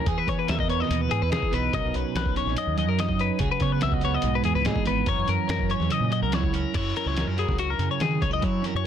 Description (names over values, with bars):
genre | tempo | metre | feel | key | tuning
math rock and midwest emo | 144 BPM | 4/4 | straight | unclear | A4 = 441 Hz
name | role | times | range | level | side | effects
twelve-string electric guitar | accompaniment | 0.0-8.9 s | E2 to C#5 | -28 LUFS | right 9 dB | lush chorus
twelve-string electric guitar | arpeggios | 0.0-8.9 s | F#4 to E5 | -28 LUFS | left 9 dB | vibrato effect
growling fingered electric bass | bass | 0.1-8.9 s | G#1 to F#3 | -28 LUFS | equal | overdrive
lo-fi sampler-style drum kit | drums | 0.1-8.7 s | crash cymbal, hi-hat, kick drum, snare drum | -30 LUFS | equal | overdrive
room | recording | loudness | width
light reverb | dense, heavily limited modern master | -22 LUFS | side -9 dB against mid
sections
0.0-6.7 A section; 6.7-8.9 B section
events
none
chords
0.1 Emaj7; 1.7 Bmaj9; 3.4 C#m11; 5.1 F#7; 6.7 F#9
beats
| 0.07 0.48 0.90 1.32 | 1.73 2.15 2.57 2.98 | 3.40 3.82 4.24 4.65 | 5.07 5.49 5.91 6.33 | 6.75 7.17 7.59 8.01 | 8.43 8.85